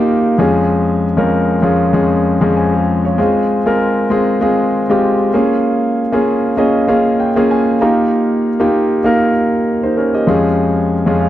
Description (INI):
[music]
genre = pop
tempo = 97 BPM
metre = 4/4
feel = swing 55% on 16ths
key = unclear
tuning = A4 = 440 Hz
[part]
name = warm concert grand piano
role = solo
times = 0.0-11.3 s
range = F2 to Bb5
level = -12 LUFS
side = equal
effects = none
[sound]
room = light reverb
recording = dry, close 1970s-style studio recording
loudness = -12 LUFS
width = side -13 dB against mid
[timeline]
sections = 0.0-11.3 A section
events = grand piano fill 6.3-8.1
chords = 0.4 Db/F; 3.2 Fm; 5.3 Bbm7; 7.8 Ebadd9; 10.3 Db/F